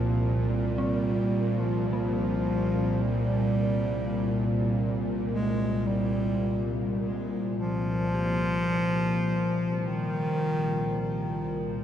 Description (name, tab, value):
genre	dark ambient drone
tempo	53 BPM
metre	4/4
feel	straight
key	C minor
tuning	A4 = 440 Hz
part	warm bass clarinet	melody	0.0-11.8 s	Eb3 to Ab3	-29 LUFS	equal	diffuse ambient delay
part	bowed-like drone	drone	0.0-11.8 s	C2 to Bb2	-27 LUFS	equal	built-in reverb
part	quartz singing bowl	texture	0.0-11.8 s	none	barely audible	none	none
part	dark detuned synth bell	arpeggios	0.8-11.8 s	Bb3 to G4	-40 LUFS	left 2 dB	none
room	wet huge ambient reverb, RT60 8.3 s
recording	none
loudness	-25 LUFS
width	side -10 dB against mid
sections	0.0-11.8 A section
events	none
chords	0.0 C7(no3)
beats	0.79 1.92 | 3.05 4.18 5.32 6.45 | 7.58 8.71 9.84 10.97